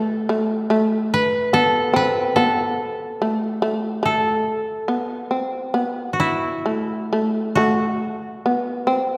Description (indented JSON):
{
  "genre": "japanese traditional, Japanese chamber music",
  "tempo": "65-73 BPM",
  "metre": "4/4",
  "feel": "rubato",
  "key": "A kumoi",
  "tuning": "A4 = 437 Hz",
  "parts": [
    { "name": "koto", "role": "melody", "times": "0.0-9.2 s", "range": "A3 to E5", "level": "-24 LUFS", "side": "equal", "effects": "none" },
    { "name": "shamisen", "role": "second line", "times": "0.0-9.2 s", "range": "A3 to C4", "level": "-23 LUFS", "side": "equal", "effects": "none" }
  ],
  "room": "wet concert hall reverb, RT60 2.2 s",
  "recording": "heard from further back in the room",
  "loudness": "-21 LUFS",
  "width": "mono",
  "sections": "0.0-7.6 A section; 7.6-9.2 B section",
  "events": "none",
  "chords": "none"
}